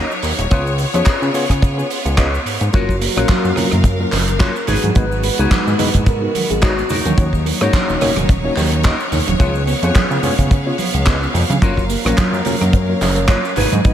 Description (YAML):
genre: nu-disco, nu disco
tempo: 108 BPM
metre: 4/4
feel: swing 56% on 16ths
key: F# major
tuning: A4 = 440 Hz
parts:
  - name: tine electric piano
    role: accompaniment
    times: 0.0-13.9 s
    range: F#3 to E#5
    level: -23 LUFS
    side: left 1 dB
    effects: ping-pong delay
  - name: bright studio string section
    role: sustained chords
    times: 0.0-13.9 s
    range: F#3 to E#5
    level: -25 LUFS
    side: left 1 dB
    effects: sidechain pumping
  - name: electric guitar with an envelope filter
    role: riff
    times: 0.0-13.9 s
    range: D#4 to D#5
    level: -27 LUFS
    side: left 3 dB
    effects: analog chorus, ping-pong delay
  - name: damped 70s drum kit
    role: drums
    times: 0.1-13.9 s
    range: cabasa, handclaps, hi-hat, rim click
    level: -22 LUFS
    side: right 2 dB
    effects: none
  - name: fat analog bass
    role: bass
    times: 0.2-13.9 s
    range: D#1 to C#3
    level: -19 LUFS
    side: equal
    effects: none
  - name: kick drum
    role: drums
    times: 0.5-13.9 s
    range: none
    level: -14 LUFS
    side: equal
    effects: none
  - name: soft octave-layered synth lead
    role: melody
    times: 2.7-7.1, 11.6-13.9 s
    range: F#4 to D#5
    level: -24 LUFS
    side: equal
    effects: chorus, phaser, vintage 12-bit sampler grit, ping-pong delay
  - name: soft round pluck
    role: arpeggios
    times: 2.7-13.9 s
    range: D#3 to E#4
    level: -28 LUFS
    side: right 2 dB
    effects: none
  - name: congas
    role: percussion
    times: 3.3-13.8 s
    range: none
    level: -24 LUFS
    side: right 3 dB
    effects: none
room: light reverb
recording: none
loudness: -14 LUFS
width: side -10 dB against mid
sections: 0.0-13.9 A section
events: none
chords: 0.0 D#m7; 0.5 C#7; 2.7 F#maj7; 4.7 G#m7; 6.9 D#m7; 9.4 C#7; 11.6 F#maj7